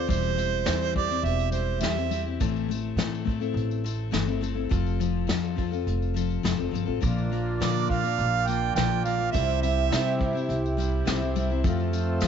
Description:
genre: acoustic folk duo or small band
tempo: 104 BPM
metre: 4/4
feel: straight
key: unclear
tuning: A4 = 440 Hz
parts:
  - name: warm harmonica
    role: second line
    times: 0.0-2.2, 7.6-10.2 s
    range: C5 to G5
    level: -28 LUFS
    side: right 11 dB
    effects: none
  - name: picked steel-string acoustic guitar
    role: accompaniment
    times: 0.0-12.3 s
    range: A2 to C5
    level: -29 LUFS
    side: left 12 dB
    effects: none
  - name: upright bass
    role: bass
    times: 0.0-12.3 s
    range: E1 to F3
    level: -28 LUFS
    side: right 1 dB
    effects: none
  - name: vintage brush drum kit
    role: drums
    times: 0.1-12.3 s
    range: hi-hat, kick drum, snare drum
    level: -30 LUFS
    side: right 1 dB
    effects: none
  - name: tambourine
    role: percussion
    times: 0.1-12.3 s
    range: none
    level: -44 LUFS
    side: left 12 dB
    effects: none
  - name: hand-pumped harmonium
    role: sustained chords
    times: 7.0-12.3 s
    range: C3 to G4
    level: -30 LUFS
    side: right 2 dB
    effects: none
room: moderate spring reverb, RT60 2.4 s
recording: 1960s-style stereo with parts hard left and right, nothing above 7.7 kHz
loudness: -24 LUFS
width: side -8 dB against mid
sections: 0.0-12.3 A section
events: harmonica solo 0.0-12.3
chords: 0.1 C/E; 2.4 Am; 4.7 F; 7.0 Bb; 9.3 C; 11.6 F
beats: | 0.08 0.66 1.24 1.82 | 2.40 2.98 3.56 4.13 | 4.71 5.29 5.87 6.44 | 7.02 7.60 8.17 8.75 | 9.33 9.90 10.48 11.06 | 11.63 12.21

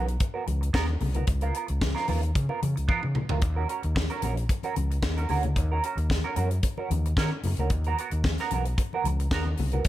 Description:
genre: disco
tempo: 112 BPM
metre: 4/4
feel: straight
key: unclear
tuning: A4 = 438 Hz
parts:
  - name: semi-hollow electric guitar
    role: accompaniment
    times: 0.0-9.9 s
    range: B3 to A#4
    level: -32 LUFS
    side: right 6 dB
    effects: wah, lush chorus
  - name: overdriven fingered electric bass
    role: bass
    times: 0.0-9.9 s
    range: Bb1 to Eb3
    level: -27 LUFS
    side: equal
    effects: none
  - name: tight funk drum kit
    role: drums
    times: 0.1-9.9 s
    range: hi-hat, kick drum, snare drum, toms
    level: -28 LUFS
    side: equal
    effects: gated reverb
  - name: congas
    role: percussion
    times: 0.2-9.9 s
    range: none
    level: -35 LUFS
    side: left 6 dB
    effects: none
room: small room ambience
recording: none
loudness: -24 LUFS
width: side -14 dB against mid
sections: 0.0-9.9 A section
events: drum fill 2.9-3.4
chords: 0.0 Bmaj9; 1.3 Db13; 3.4 Ebm7; 7.7 Bmaj7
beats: 0.20 0.74 | 1.27 1.81 2.35 2.88 | 3.42 3.95 4.49 5.02 | 5.56 6.10 6.63 7.17 | 7.71 8.24 8.78 9.32 | 9.85

